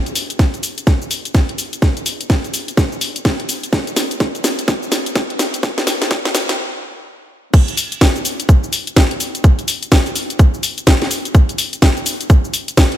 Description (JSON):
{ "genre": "house", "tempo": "126 BPM", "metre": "4/4", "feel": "swing 61% on 16ths", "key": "none", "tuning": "none", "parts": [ { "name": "house drum kit", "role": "drums", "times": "0.1-13.0 s", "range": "crash cymbal, hi-hat, shaker, snare drum", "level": "-18 LUFS", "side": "left 1 dB", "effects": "none" }, { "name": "electronic kick drum", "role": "drums", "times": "0.4-12.9 s", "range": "none", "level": "-13 LUFS", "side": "equal", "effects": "none" } ], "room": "light reverb", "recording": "high-pass filter", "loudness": "-14 LUFS", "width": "side -12 dB against mid", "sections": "0.0-7.5 A section; 7.5-13.0 B section", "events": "build-up 0.0-7.5; drum fill 0.0-6.6; filter sweep 0.0-7.5; stop 6.6-7.5; drop 7.5-13.0", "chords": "none" }